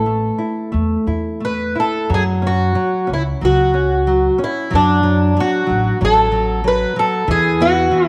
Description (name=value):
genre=fado-style ballad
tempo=92 BPM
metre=4/4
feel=rubato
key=unclear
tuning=A4 = 440 Hz
part: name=fingerpicked twelve-string acoustic guitar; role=melody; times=0.0-8.1 s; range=D4 to B4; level=-19 LUFS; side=equal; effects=none
part: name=nylon-string guitar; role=accompaniment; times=0.0-8.1 s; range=E3 to E4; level=-24 LUFS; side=equal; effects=none
part: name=upright bass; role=bass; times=0.0-7.9 s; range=A1 to F#2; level=-22 LUFS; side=equal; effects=none
room=moderate echo chamber reverb, RT60 1.5 s, small room ambience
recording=none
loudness=-17 LUFS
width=mono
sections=0.0-2.1 A section; 2.1-8.1 B section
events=none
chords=0.0 A5; 2.1 F#5; 4.7 D; 7.3 E5